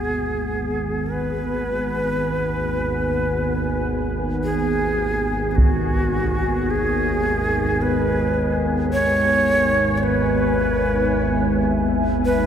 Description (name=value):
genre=dark ambient drone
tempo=free time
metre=none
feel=none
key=unclear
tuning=A4 = 440 Hz
part: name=breathy bright shakuhachi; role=melody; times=0.0-12.5 s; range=F#4 to C#5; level=-22 LUFS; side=equal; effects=diffuse ambient delay
part: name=deep dark ambient pad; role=sustained chords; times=0.0-12.5 s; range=G#2 to G#5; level=-24 LUFS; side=equal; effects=chorus, built-in reverb
part: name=carillon bells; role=arpeggios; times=0.0-1.1 s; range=none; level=barely audible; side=none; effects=none
part: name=analog drone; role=drone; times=0.0-12.5 s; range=G#1 to D#2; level=-24 LUFS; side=right 1 dB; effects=chorus
part: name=solo taiko drums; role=percussion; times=5.6-5.8 s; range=none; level=-23 LUFS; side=equal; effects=low-pass filter on perc
room=wet cathedral reverb, RT60 6.5 s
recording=in a vast, echoing space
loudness=-18 LUFS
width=side -8 dB against mid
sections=0.0-12.5 A section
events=fade-in on synth drone 0.0-12.5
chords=0.0 G#m7; 5.6 E/G#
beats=free time